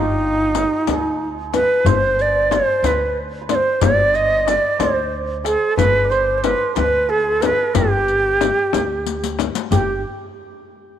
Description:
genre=Persian modal ensemble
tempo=61 BPM (dotted quarters)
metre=6/8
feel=straight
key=G dastgah homayun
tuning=A4 = 440 Hz
part: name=breathy bright ney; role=melody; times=0.0-10.0 s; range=Eb4 to Eb5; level=-17 LUFS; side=right 1 dB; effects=none
part: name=santur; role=second line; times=0.0-10.0 s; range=Eb4 to Eb5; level=-28 LUFS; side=right 8 dB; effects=none
part: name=upright bass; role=bass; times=0.0-10.0 s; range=G1 to D2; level=-26 LUFS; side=equal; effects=none
part: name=tombak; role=percussion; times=0.2-10.0 s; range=none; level=-23 LUFS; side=left 5 dB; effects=none
part: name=riq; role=percussion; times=0.5-10.0 s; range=none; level=-29 LUFS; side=left 12 dB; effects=none
part: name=frame drum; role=percussion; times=0.6-10.0 s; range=none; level=-25 LUFS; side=left 10 dB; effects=none
room=moderate plate reverb, RT60 3.0 s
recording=1960s-style stereo with parts hard left and right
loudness=-15 LUFS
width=side -10 dB against mid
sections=0.0-9.7 A section; 9.7-11.0 B section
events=drum fill 9.1-9.7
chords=none

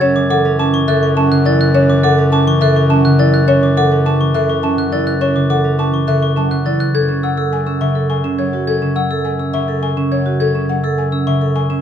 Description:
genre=classical, minimalist pattern music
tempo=104 BPM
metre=3/4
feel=straight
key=F# minor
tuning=A4 = 440 Hz
part: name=buzzing marimba with soft mallets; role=melody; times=0.0-11.7 s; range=A4 to A5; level=-20 LUFS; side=left 4 dB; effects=none
part: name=concert harp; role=accompaniment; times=0.0-11.8 s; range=C#3 to C#4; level=-16 LUFS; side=equal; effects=none
part: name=glockenspiel with soft plastic mallets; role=arpeggios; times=0.0-11.7 s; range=C#6 to A6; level=-23 LUFS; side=left 3 dB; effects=none
part: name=vibraphone with medium mallets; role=arpeggios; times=0.0-11.8 s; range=C#4 to A4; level=-20 LUFS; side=right 9 dB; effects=none
part: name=warm bass clarinet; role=bass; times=0.0-11.8 s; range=F#2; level=-21 LUFS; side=left 2 dB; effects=none
room=wet large studio reverb, RT60 1.2 s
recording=close, detailed microphones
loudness=-12 LUFS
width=side -9 dB against mid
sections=0.0-6.9 A section; 6.9-11.8 A section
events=none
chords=0.0 Dadd9/F#; 6.9 F#m7

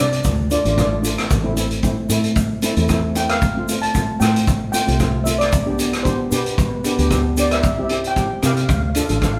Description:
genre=calypso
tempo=114 BPM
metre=4/4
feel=swing 54% on 16ths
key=unclear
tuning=A4 = 437 Hz
part: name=steel pan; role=melody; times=0.0-9.4 s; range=B4 to A5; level=-26 LUFS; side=equal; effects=none
part: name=steel pan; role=accompaniment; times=0.0-9.4 s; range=G3 to A4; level=-25 LUFS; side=equal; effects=none
part: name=fingered electric bass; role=bass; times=0.0-9.4 s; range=A1 to C3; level=-24 LUFS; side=equal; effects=none
part: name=street-band drum kit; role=drums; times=0.1-9.3 s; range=hi-hat, kick drum, rim click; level=-24 LUFS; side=equal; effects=none
part: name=egg shaker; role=percussion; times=0.2-9.4 s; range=none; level=-34 LUFS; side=equal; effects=none
room=wet large studio reverb, RT60 1.4 s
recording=band playing live in one room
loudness=-19 LUFS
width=mono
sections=0.0-9.4 A section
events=none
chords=0.2 Dm; 1.3 Am; 3.4 Fadd9/A; 5.5 G/B; 7.6 C; 8.7 Dm

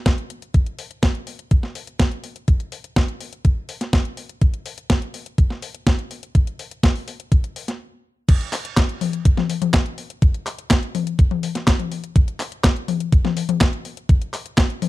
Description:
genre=italo disco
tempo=124 BPM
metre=4/4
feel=straight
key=none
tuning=none
part: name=clean 12-bit digital drum machine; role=drums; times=0.1-14.9 s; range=crash cymbal, handclaps, hi-hat, snare drum, toms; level=-22 LUFS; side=left 2 dB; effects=overdrive, studio reverb
part: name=electronic kick drum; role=drums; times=0.1-14.7 s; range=none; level=-16 LUFS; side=equal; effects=overdrive, studio reverb
room=little or no reverb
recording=dry, close 1970s-style studio recording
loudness=-18 LUFS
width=side -17 dB against mid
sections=0.0-8.3 A section; 8.3-14.9 B section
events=stop 7.8-8.3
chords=none

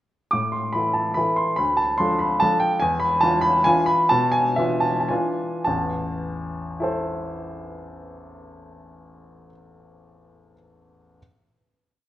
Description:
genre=classical, piano waltz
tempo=101-154 BPM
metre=3/4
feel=rubato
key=A minor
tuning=A4 = 440 Hz
part: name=clear baby grand piano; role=solo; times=0.3-11.2 s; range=A1 to D6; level=-20 LUFS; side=equal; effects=none
room=wet recital hall reverb, RT60 1.4 s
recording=worn, warbling old tape, cassette tape, warbly pitch drift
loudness=-19 LUFS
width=side -14 dB against mid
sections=0.3-5.7 A section; 5.7-9.1 final chord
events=slowing down 2.2-5.7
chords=0.3 A5; 1.6 Dm; 2.8 E7b9; 5.7 Am

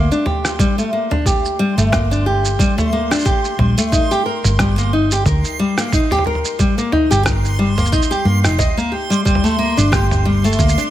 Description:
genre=folktronica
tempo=90 BPM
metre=4/4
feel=swing 56% on 16ths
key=G minor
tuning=A4 = 442 Hz
part: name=nylon-string guitar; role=arpeggios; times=0.0-10.9 s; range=G3 to Eb5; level=-17 LUFS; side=left 1 dB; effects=ping-pong delay
part: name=hollow-body short-scale fingered electric bass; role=bass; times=0.0-10.7 s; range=F1 to G2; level=-16 LUFS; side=equal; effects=none
part: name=backwards swelling texture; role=texture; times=0.0-10.9 s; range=C6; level=-27 LUFS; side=right 2 dB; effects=built-in reverb
part: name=lo-fi sampler-style drum kit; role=drums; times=0.1-10.9 s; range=rim click, shaker, toms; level=-22 LUFS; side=right 1 dB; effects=none
part: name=electronic kick drum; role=drums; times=0.6-10.7 s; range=none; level=-19 LUFS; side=equal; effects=none
room=light reverb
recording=none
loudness=-14 LUFS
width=side -12 dB against mid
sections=0.0-10.9 A section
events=none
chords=0.0 Gmadd9; 3.9 Eb/G; 9.3 Gmadd9

